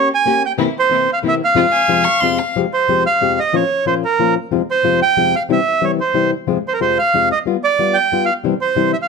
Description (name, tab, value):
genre	tango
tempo	184 BPM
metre	3/4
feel	rubato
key	F minor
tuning	A4 = 436 Hz
part	bandoneon	melody	0.0-9.1 s	Bb4 to Ab5	-15 LUFS	right 4 dB	none
part	nylon-string guitar	accompaniment	0.0-8.9 s	F2 to G4	-19 LUFS	left 9 dB	none
part	clear studio string section	stabs	0.0-2.4 s	Ab3 to G4	-26 LUFS	left 1 dB	tape echo
part	clear violin	second line	1.7-2.6 s	F5 to Db6	-19 LUFS	left 5 dB	none
room	light reverb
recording	none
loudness	-13 LUFS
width	side -5 dB against mid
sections	0.0-2.6 A section; 2.6-9.1 A section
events	none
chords	0.0 Gdim/Bb; 0.6 C7; 1.6 Fm; 2.6 Fmadd9; 3.5 Bbm; 4.5 Fm; 5.5 C; 6.5 Fm; 7.5 G7; 8.4 C